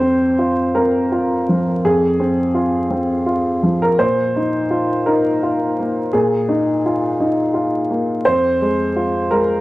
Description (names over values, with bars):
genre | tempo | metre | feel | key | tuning
neoclassical minimalist piano | 56 BPM (dotted quarters) | 6/8 | rubato | F minor | A4 = 440 Hz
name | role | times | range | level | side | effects
warm upright piano | solo | 0.0-9.6 s | F2 to C5 | -15 LUFS | equal | none
room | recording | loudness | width
moderate studio reverb, RT60 0.6 s | worn, warbling old tape, cassette tape, vinyl crackle, warbly pitch drift | -15 LUFS | side -18 dB against mid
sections
0.0-9.6 A section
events
none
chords
0.0 Fm; 4.0 Bb7sus4; 8.2 Fm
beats
0.76 | 1.84 2.90 | 4.00 5.08 | 6.15 7.20 | 8.25 9.31